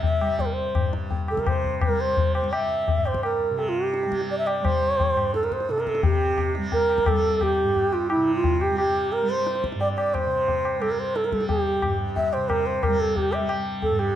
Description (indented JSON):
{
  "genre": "indian classical, Hindustani",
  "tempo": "167-182 BPM",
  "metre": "4/4",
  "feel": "straight",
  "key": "G raga bageshri",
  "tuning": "A4 = 441 Hz",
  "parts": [
    { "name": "mellow bansuri", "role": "melody", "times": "0.0-14.2 s", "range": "E4-22c to E5", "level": "-23 LUFS", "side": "right 1 dB", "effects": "none" },
    { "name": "tanpura", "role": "drone", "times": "0.0-14.2 s", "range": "G2 to G3", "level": "-30 LUFS", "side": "right 1 dB", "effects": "none" },
    { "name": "tabla", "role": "percussion", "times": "0.0-14.1 s", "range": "none", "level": "-27 LUFS", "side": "left 4 dB", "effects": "none" }
  ],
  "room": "moderate recital hall reverb, RT60 1.4 s",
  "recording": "dark, warm production",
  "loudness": "-21 LUFS",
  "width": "side -11 dB against mid",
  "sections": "0.0-6.0 A section; 6.0-14.2 B section",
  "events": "speeding up 0.0-14.2",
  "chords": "none"
}